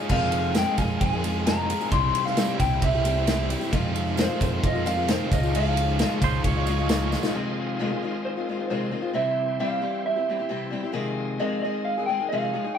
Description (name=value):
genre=folk rock and heartland rock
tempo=133 BPM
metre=4/4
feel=straight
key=F minor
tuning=A4 = 440 Hz
part: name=picked steel-string acoustic guitar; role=accompaniment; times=0.0-12.8 s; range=F2 to Ab4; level=-28 LUFS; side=left 3 dB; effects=none
part: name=bright tonewheel organ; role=sustained chords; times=0.0-12.8 s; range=E3 to Db5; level=-38 LUFS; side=right 1 dB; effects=slow rotary speaker, chorus vibrato
part: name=crunchy overdriven guitar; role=riff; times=0.0-7.3 s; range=F2 to F4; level=-32 LUFS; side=right 1 dB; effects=tremolo
part: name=electric slide guitar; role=melody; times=0.1-12.8 s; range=C5 to C6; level=-28 LUFS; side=right 1 dB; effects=tape echo
part: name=picked electric bass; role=bass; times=0.1-7.1 s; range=C2 to F2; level=-28 LUFS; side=equal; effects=none
part: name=loose indie drum kit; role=drums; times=0.1-7.3 s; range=crash cymbal, kick drum, ride cymbal, snare drum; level=-26 LUFS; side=right 1 dB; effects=none
part: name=tambourine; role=percussion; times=0.4-7.3 s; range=none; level=-44 LUFS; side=right 7 dB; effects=none
part: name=pedal steel guitar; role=second line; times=6.2-7.2 s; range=C5 to Db5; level=-31 LUFS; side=right 9 dB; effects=none
room=moderate studio reverb, RT60 0.8 s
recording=band playing live in one room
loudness=-22 LUFS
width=side -8 dB against mid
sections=0.0-7.3 A section; 7.3-12.8 A section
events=drum fill 7.1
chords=0.1 Fm7; 1.9 C; 3.7 Fm7; 5.3 Dbadd9; 7.3 Fm7; 9.1 C; 11.0 Fm7